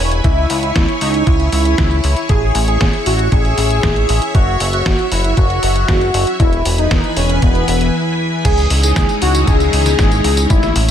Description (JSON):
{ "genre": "italo disco", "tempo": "117 BPM", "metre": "4/4", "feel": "straight", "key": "C# minor", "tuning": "A4 = 440 Hz", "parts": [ { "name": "wide unison lead", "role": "melody", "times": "0.0-10.9 s", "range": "B3 to C#5", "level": "-18 LUFS", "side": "left 1 dB", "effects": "analog chorus, ping-pong delay" }, { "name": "string machine, full ensemble", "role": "sustained chords", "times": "0.0-10.9 s", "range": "E3 to C#6", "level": "-20 LUFS", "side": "equal", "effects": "ensemble chorus" }, { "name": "chorused synth bass", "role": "bass", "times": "0.0-10.9 s", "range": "E1 to C#2", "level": "-16 LUFS", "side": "equal", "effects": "none" }, { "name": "detuned 8-bit digital drum machine", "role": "drums", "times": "0.1-10.9 s", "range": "crash cymbal, hi-hat, snare drum, tambourine", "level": "-21 LUFS", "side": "equal", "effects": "studio reverb" }, { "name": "electronic kick drum", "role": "drums", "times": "0.2-10.6 s", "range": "none", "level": "-15 LUFS", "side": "equal", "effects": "studio reverb" } ], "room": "digital ambience", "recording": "none", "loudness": "-12 LUFS", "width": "side -9 dB against mid", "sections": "0.0-8.4 A section; 8.4-10.9 B section", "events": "break 7.9-8.4", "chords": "0.2 C#m; 2.3 A; 4.3 F#5; 6.4 E; 8.4 C#madd9", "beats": "| 0.24 0.76 1.27 1.78 | 2.29 2.81 3.32 3.83 | 4.35 4.86 5.37 5.88 | 6.40 6.91 7.42 7.94 | 8.45 8.96 9.47 9.99 | 10.50" }